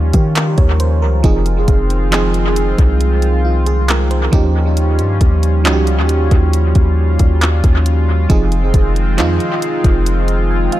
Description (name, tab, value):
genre	contemporary R&B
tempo	68 BPM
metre	4/4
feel	straight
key	F minor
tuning	A4 = 439 Hz
part	FM electric piano	accompaniment	0.0-10.8 s	F3 to Ab5	-19 LUFS	right 4 dB	chorus, dub echo
part	chorused pulse-width pad	sustained chords	0.0-10.8 s	Eb3 to F4	-22 LUFS	left 1 dB	none
part	long sustained 808-style bass	bass	0.0-10.7 s	F1 to Eb3	-14 LUFS	equal	none
part	smooth R&B drum kit	drums	0.1-10.8 s	handclaps, hi-hat, kick drum	-16 LUFS	equal	dub echo
room	digital ambience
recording	echo-heavy mix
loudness	-11 LUFS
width	side -14 dB against mid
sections	0.0-10.8 A section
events	none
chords	0.0 Eb9; 1.2 Fm7; 4.3 Eb9; 8.3 Fm7